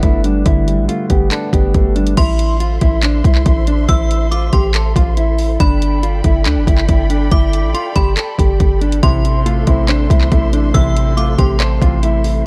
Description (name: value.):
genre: hip hop, trap.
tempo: 140 BPM.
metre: 4/4.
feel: half-time.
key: A minor.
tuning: A4 = 440 Hz.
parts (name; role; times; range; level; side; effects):
mellow electric guitar; melody; 0.0-12.4 s; D4 to A4; -22 LUFS; equal; none.
felt-muted upright piano; accompaniment; 0.0-2.2, 9.0-12.5 s; C3 to C5; -23 LUFS; equal; none.
warm 808-style bass; bass; 0.0-12.4 s; G1 to D2; -18 LUFS; equal; none.
trap drum kit; drums; 0.0-12.3 s; crash cymbal, handclaps, hi-hat, kick drum; -17 LUFS; equal; none.
metallic FM bell; second line; 2.2-11.6 s; B5 to E6; -27 LUFS; equal; chorus, digital delay.
dark symphonic string section; sustained chords; 2.2-12.4 s; A4 to C6; -30 LUFS; equal; none.
room: little or no reverb.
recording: dark, warm production.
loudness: -14 LUFS.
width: mono.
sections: 0.0-2.2 A section; 2.2-12.5 B section.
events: none.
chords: 0.0 Gadd9; 2.2 Am; 5.6 Gadd9; 9.0 Am.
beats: 0.03 | 0.46 0.89 1.32 1.74 | 2.17 2.60 3.03 3.46 | 3.89 4.32 4.74 5.17 | 5.60 6.03 6.46 6.89 | 7.32 7.74 8.17 8.60 | 9.03 9.46 9.89 10.32 | 10.74 11.17 11.60 12.03 | 12.46.